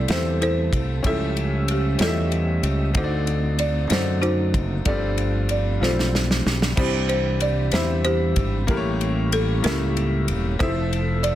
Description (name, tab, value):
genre	slow gospel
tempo	63 BPM (dotted quarters)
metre	6/8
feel	straight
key	C major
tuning	A4 = 440 Hz
part	folk marimba with medium mallets	melody	0.0-11.3 s	C#4 to D5	-27 LUFS	equal	none
part	clear baby grand piano	accompaniment	0.0-11.3 s	G2 to B5	-28 LUFS	left 2 dB	none
part	mellow tonewheel organ	sustained chords	0.0-11.3 s	D3 to E5	-30 LUFS	right 2 dB	slow rotary speaker
part	fingered electric bass	bass	0.0-11.3 s	E1 to F#2	-23 LUFS	equal	none
part	natural country drum kit	drums	0.1-11.3 s	crash cymbal, kick drum, ride cymbal, snare drum	-26 LUFS	equal	none
room	light reverb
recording	dense, heavily limited modern master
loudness	-19 LUFS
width	side -12 dB against mid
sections	0.0-6.8 A section; 6.8-11.3 A section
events	drum fill 5.8-6.8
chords	0.0 C6; 1.0 A7b13/C#; 3.0 D7b9; 4.9 G9sus4; 6.8 Cmaj9; 8.7 A7b9; 10.6 Fmaj7